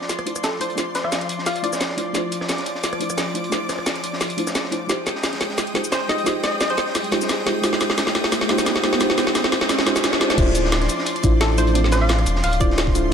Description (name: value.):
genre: liquid drum and bass.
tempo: 175 BPM.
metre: 4/4.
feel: swing 54% on 16ths.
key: D minor.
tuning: A4 = 440 Hz.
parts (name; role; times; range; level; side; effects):
deep mellow chord stab; accompaniment; 0.0-13.1 s; Ab3 to C5; -25 LUFS; right 1 dB; chorus, ping-pong delay.
lush unison pad; sustained chords; 0.0-13.1 s; F3 to Eb6; -28 LUFS; equal; chorus, sidechain pumping.
crunchy breakbeat drum kit; drums; 0.0-13.0 s; hi-hat, snare drum; -30 LUFS; equal; high-pass filter on hats, high-pass filter on snare, high-pass filter on room.
drum and bass drum kit; drums; 0.1-13.0 s; cabasa, crash cymbal, hi-hat, rim click, snare drum; -23 LUFS; equal; none.
warm sub bass; bass; 0.3-13.1 s; D1 to F2; -20 LUFS; equal; high-pass filter.
hollow square pluck; melody; 0.4-1.9, 5.9-7.0, 11.4-12.9 s; A4 to F5; -26 LUFS; left 1 dB; chorus, ping-pong delay.
riser; sound effects; 6.7-10.4 s; none; -28 LUFS; right 2 dB; none.
electronic kick drum; drums; 10.4-12.9 s; none; -20 LUFS; equal; none.
room: moderate recital hall reverb, RT60 1.4 s.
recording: none.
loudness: -18 LUFS.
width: side -7 dB against mid.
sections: 0.0-10.4 A section; 10.4-13.1 B section.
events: build-up 0.0-10.4; drum fill 0.0-10.4; filter sweep on synth stab 0.0-10.4; riser 6.7-10.4; drop 10.4-13.1.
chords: 0.0 Dm9; 4.9 Fm9; 10.4 Dm9.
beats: 0.09 0.44 | 0.78 1.12 1.47 1.81 | 2.15 2.49 2.84 3.18 | 3.52 3.87 4.21 4.55 | 4.89 5.24 5.58 5.92 | 6.27 6.61 6.95 7.29 | 7.64 7.98 8.32 8.67 | 9.01 9.35 9.69 10.04 | 10.38 10.72 11.07 11.41 | 11.75 12.09 12.44 12.78 | 13.12.